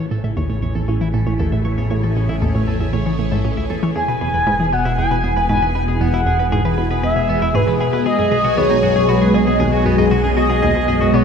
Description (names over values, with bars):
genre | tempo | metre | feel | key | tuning
ambient, sequencer-driven space music | 117 BPM | 4/4 | straight | unclear | A4 = 439 Hz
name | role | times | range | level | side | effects
phased string machine | sustained chords | 0.0-11.2 s | B2 to D#5 | -20 LUFS | equal | ensemble chorus, phaser
twelve-string electric guitar | arpeggios | 0.0-11.2 s | B3 to E5 | -27 LUFS | equal | auto-pan, ping-pong delay
analog pluck | riff | 0.0-11.2 s | C#2 to E3 | -21 LUFS | equal | chorus, ping-pong delay
fat analog bass | bass | 0.0-11.2 s | E1 to B1 | -22 LUFS | equal | none
bubbling stepped-filter texture | texture | 0.0-11.2 s | G#4 to G#5 | -32 LUFS | right 1 dB | chorus, built-in reverb
expressive synth lead | melody | 4.0-11.2 s | B4 to G#5 | -19 LUFS | equal | analog chorus, vintage 12-bit sampler grit, ping-pong delay
room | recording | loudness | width
wet concert hall reverb, RT60 2.2 s | none | -15 LUFS | side -6 dB against mid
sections
0.0-11.2 A section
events
fade-in on clean electric guitar 0.0-11.2; fade-in on string machine 0.0-11.2; fade-in on synth texture 0.0-11.2; filter sweep on synth arpeggio sound 0.0-11.2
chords
0.0 A; 4.0 E; 8.1 B6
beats
0.37 0.88 1.39 | 1.91 2.42 2.93 3.44 | 3.96 4.47 4.98 5.50 | 6.01 6.52 7.04 7.55 | 8.06 8.57 9.09 9.60 | 10.11 10.62 11.14